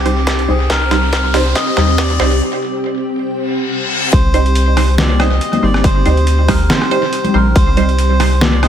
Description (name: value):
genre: deep dubstep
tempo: 140 BPM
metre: 4/4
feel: swing 55% on 16ths, half-time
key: C minor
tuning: A4 = 440 Hz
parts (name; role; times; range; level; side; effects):
- melodica; melody; 0.0-8.7 s; G4 to Eb5; -20 LUFS; equal; tape echo
- granular cloud pad; sustained chords; 0.0-8.7 s; C4 to G4; -21 LUFS; equal; built-in reverb
- soft dub sub bass; bass; 0.0-8.7 s; G1 to Eb2; -14 LUFS; equal; none
- riser and reverse cymbal; sound effects; 0.0-4.1 s; none; -22 LUFS; left 3 dB; none
- filtered dub chord stab; stabs; 0.1-8.7 s; G3 to C5; -20 LUFS; right 3 dB; phaser, tape echo
- trip hop sampler-style drum kit; drums; 0.1-8.7 s; hi-hat, rim click, snare drum; -20 LUFS; equal; high-pass filter on hats, high-pass filter on snare, high-pass filter on room, tape echo
- electronic kick drum; drums; 0.3-7.7 s; none; -14 LUFS; equal; overdrive, high-pass filter on kick, high-pass filter on room
- congas; percussion; 5.0-8.5 s; none; -19 LUFS; left 4 dB; tape echo
room: light reverb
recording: echo-heavy mix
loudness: -11 LUFS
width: side -9 dB against mid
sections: 0.0-4.1 A section; 4.1-8.7 B section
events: build-up 0.0-4.1; drum fill 0.0-2.4; riser 0.0-2.4; filter sweep on synth stab 0.0-4.1; break 2.4-4.1; reverse cymbal 3.5-4.1; drop 4.1-8.7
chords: 0.0 Cm